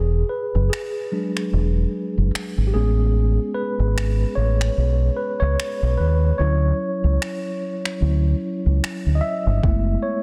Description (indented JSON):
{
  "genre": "contemporary R&B",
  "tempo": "74 BPM",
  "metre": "4/4",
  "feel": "swing 58% on 16ths",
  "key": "unclear",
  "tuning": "A4 = 439 Hz",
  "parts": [
    { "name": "mellow tine electric piano", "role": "accompaniment", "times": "0.0-10.2 s", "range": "F#3 to E5", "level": "-27 LUFS", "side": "equal", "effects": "none" },
    { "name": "deep dub fingered electric bass", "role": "bass", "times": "0.0-9.9 s", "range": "E1 to D#2", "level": "-21 LUFS", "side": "equal", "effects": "none" },
    { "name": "smooth R&B drum kit", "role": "drums", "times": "0.7-9.9 s", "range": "finger snaps, kick drum", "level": "-29 LUFS", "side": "equal", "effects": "overdrive, soft clipping on snare" }
  ],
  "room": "little or no reverb",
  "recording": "dense, heavily limited modern master",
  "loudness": "-21 LUFS",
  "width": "mono",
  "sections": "0.0-10.2 A section",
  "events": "break 0.0-9.6; tine electric piano solo 0.0-10.2",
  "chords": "0.0 E7; 2.7 Amaj9; 6.4 Dmaj7; 9.6 F#m11"
}